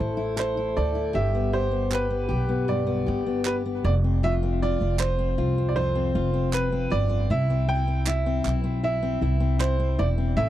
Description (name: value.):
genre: acoustic pop.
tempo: 78 BPM.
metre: 4/4.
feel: straight.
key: C major.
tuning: A4 = 440 Hz.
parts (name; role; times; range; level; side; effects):
clear upright piano; melody; 0.0-10.5 s; B4 to G5; -28 LUFS; right 3 dB; tape echo.
fingerpicked steel-string acoustic guitar; accompaniment; 0.0-10.5 s; F2 to A4; -28 LUFS; left 4 dB; none.
upright bass; bass; 0.0-10.5 s; E1 to D2; -25 LUFS; equal; none.
group handclap; percussion; 0.4-9.8 s; none; -31 LUFS; right 7 dB; none.
room: little or no reverb.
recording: dry, close 1970s-style studio recording.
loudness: -22 LUFS.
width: side -13 dB against mid.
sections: 0.0-10.5 A section.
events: none.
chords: 0.0 Am; 1.2 G; 3.8 F5; 7.3 C.